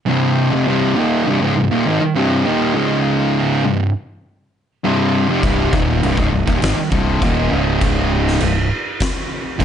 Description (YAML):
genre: stoner and doom metal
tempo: 101 BPM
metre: 4/4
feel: straight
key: C minor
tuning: A4 = 441 Hz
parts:
  - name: fuzz guitar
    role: riff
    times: 0.1-9.6 s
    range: C2 to Eb3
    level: -18 LUFS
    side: left 8 dB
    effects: distortion
  - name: thick fuzz guitar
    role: riff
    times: 0.1-9.6 s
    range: C2 to Eb3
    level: -18 LUFS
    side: right 6 dB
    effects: distortion
  - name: growling fingered electric bass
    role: bass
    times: 5.4-9.6 s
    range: C1 to Ab1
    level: -20 LUFS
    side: left 1 dB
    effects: overdrive, tube saturation
  - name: oversized low-tuned drum kit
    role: drums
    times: 5.4-9.6 s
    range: crash cymbal, kick drum, snare drum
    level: -20 LUFS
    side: equal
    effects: none
room: light reverb, studio ambience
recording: nothing above 10.7 kHz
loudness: -14 LUFS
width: side -8 dB against mid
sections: 0.0-9.6 A section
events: none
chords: 0.0 Cm; 2.8 Db5; 3.7 Cm; 7.5 Db5; 8.4 C5